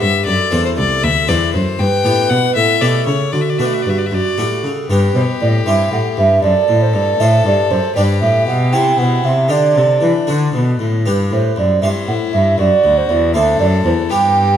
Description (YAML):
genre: classical, baroque-style sonata movement with continuo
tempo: 78 BPM (dotted quarters)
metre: 6/8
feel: straight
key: D major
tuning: A4 = 444 Hz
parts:
  - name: rich violin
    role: melody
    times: 0.0-14.6 s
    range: D4 to G5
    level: -20 LUFS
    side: left 7 dB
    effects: none
  - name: mellow hollow baroque flute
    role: second line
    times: 0.0-14.6 s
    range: F#4 to G5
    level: -16 LUFS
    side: right 4 dB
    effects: none
  - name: harpsichord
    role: accompaniment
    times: 0.0-14.6 s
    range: C2 to C5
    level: -20 LUFS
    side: left 4 dB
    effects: none
  - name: rich cello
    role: bass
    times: 0.0-14.6 s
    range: C2 to E3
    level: -17 LUFS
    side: equal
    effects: none
room: moderate recital hall reverb, RT60 1.6 s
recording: none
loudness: -12 LUFS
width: side -9 dB against mid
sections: 0.0-4.9 A section; 4.9-14.6 A section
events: none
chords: 0.3 D7; 1.8 G; 2.5 A7; 3.3 D; 4.9 G; 5.7 C/G; 6.4 D7/F#; 8.0 G; 8.7 C; 9.5 Dsus4; 10.3 D; 11.1 G; 11.8 C/G; 12.6 D7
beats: | 0.26 1.02 | 1.78 2.55 | 3.33 4.11 | 4.89 5.66 | 6.43 7.20 | 7.96 8.73 | 9.50 10.28 | 11.05 11.82 | 12.59 13.35 | 14.11